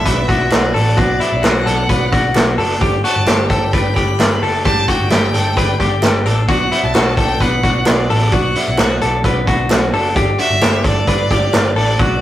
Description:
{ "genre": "jangly indie pop", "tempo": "131 BPM", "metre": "4/4", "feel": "straight", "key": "B minor", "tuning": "A4 = 441 Hz", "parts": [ { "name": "clear violin", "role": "melody", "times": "0.0-12.2 s", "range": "D5 to B5", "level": "-22 LUFS", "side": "right 1 dB", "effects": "none" }, { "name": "clean electric guitar", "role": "accompaniment", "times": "0.0-12.2 s", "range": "B2 to G4", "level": "-23 LUFS", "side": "right 3 dB", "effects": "none" }, { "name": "direct-recorded clean electric guitar", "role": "arpeggios", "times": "0.0-12.2 s", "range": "E4 to B4", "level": "-19 LUFS", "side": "left 3 dB", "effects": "none" }, { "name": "overdriven combo organ", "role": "accompaniment", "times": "0.1-12.1 s", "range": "D4 to E5", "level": "-26 LUFS", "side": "right 2 dB", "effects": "none" }, { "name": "vintage muted picked electric bass", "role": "bass", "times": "0.1-12.2 s", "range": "F#1 to B1", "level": "-20 LUFS", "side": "equal", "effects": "none" }, { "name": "vintage drum kit", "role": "drums", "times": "0.1-12.1 s", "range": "hi-hat, kick drum, snare drum", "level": "-16 LUFS", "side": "equal", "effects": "none" }, { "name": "group handclap", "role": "percussion", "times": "0.5-11.6 s", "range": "none", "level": "-30 LUFS", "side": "right 1 dB", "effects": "none" } ], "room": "wet studio reverb, RT60 0.5 s", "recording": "rough rehearsal-room recording, warm saturation", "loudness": "-12 LUFS", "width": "side -13 dB against mid", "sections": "0.0-12.2 A section", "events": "none", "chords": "0.0 Bm; 2.8 Gsus2; 6.5 Bm; 10.2 Gsus2", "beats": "0.06 0.52 | 0.97 1.43 1.89 2.35 | 2.81 3.27 3.73 4.19 | 4.65 5.11 5.57 6.03 | 6.49 6.95 7.41 7.87 | 8.32 8.78 9.24 9.70 | 10.16 10.62 11.08 11.54 | 11.99" }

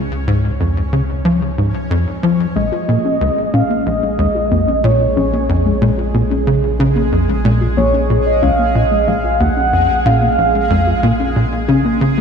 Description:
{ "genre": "ambient, sequencer-driven space music", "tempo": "92 BPM", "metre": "4/4", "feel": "straight", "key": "Bb minor", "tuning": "A4 = 440 Hz", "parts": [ { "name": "tight sequencer bass", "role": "riff", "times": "0.0-12.2 s", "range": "Bb1 to F3", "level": "-17 LUFS", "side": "equal", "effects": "wide subtle chorus, ping-pong delay" }, { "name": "warm sub bass", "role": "bass", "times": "0.0-12.2 s", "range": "Bb1 to Db2", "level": "-22 LUFS", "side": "equal", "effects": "none" }, { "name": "bubbling stepped-filter texture", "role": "texture", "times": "0.0-12.2 s", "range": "Ab3 to Db5", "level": "-25 LUFS", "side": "right 2 dB", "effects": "chorus, built-in reverb" }, { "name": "pulse-width lead", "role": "melody", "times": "2.6-11.4 s", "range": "Db5 to Gb5", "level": "-17 LUFS", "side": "right 1 dB", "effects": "chorus, ping-pong delay" }, { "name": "warbly dusty pluck", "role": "arpeggios", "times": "2.6-12.2 s", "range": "Ab3 to F4", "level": "-19 LUFS", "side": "left 3 dB", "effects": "chorus, auto-pan, cassette tape, ping-pong delay" } ], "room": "wet lush hall reverb, RT60 2.9 s", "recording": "dark, warm production", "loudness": "-13 LUFS", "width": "side -6 dB against mid", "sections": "0.0-12.2 A section", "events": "none", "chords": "0.0 Db; 2.6 Bbm7", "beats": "0.60 1.25 1.91 | 2.56 3.21 3.86 4.51 | 5.17 5.82 6.47 7.12 | 7.78 8.43 9.08 9.73 | 10.38 11.04 11.69" }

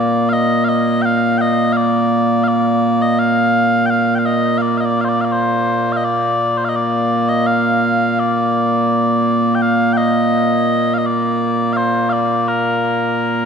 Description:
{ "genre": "scottish traditional, Scottish pipe music", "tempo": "84 BPM", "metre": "4/4", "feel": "straight", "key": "Bb major", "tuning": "A4 = 442 Hz", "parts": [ { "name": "mellow small bagpipes", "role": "solo", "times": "0.0-13.5 s", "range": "Bb2 to G5", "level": "-14 LUFS", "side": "equal", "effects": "none" } ], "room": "moderate concert hall reverb, RT60 2.0 s", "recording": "none", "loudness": "-14 LUFS", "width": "side -6 dB against mid", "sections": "0.0-13.5 A section", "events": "none", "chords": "none", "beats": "0.34 | 1.05 1.76 2.48 3.19 | 3.91 4.62 5.34 6.05 | 6.76 7.48 8.19 8.91 | 9.62 10.34 11.05 11.77 | 12.48 13.19" }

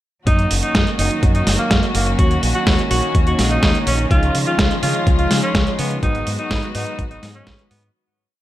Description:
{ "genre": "italo disco", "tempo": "125 BPM", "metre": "4/4", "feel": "straight", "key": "G# dorian", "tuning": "A4 = 438 Hz", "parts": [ { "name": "clear alto saxophone", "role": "melody", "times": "0.3-7.9 s", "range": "A#3 to F#4", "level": "-23 LUFS", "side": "equal", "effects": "digital delay" }, { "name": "warm studio string section", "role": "sustained chords", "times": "0.3-7.9 s", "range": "D#3 to F#4", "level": "-24 LUFS", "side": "equal", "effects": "none" }, { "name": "fingered electric bass with an envelope filter", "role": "bass", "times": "0.3-7.9 s", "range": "F#1 to C#3", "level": "-21 LUFS", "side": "equal", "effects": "none" }, { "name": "dusty soul sampler-style drum kit", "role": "drums", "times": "0.3-7.9 s", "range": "hi-hat, snare drum", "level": "-21 LUFS", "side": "right 1 dB", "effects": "overdrive, studio reverb" }, { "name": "electronic kick drum", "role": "drums", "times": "0.3-7.6 s", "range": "none", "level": "-18 LUFS", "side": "equal", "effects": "overdrive, studio reverb" }, { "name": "analog synth brass", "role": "stabs", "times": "2.2-7.8 s", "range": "G#3 to E#5", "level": "-27 LUFS", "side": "left 3 dB", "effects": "chorus" } ], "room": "light reverb, digital ambience", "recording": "none", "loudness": "-15 LUFS", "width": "side -14 dB against mid", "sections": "0.3-7.9 verse", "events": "fade-out 5.4-7.9", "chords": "0.3 F#6; 2.2 D#m7; 4.1 C#add9; 6.0 G#m7", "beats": "| 0.27 0.75 1.23 1.71 | 2.19 2.67 3.15 3.63 | 4.11 4.59 5.07 5.55 | 6.03 6.51 6.99 7.47" }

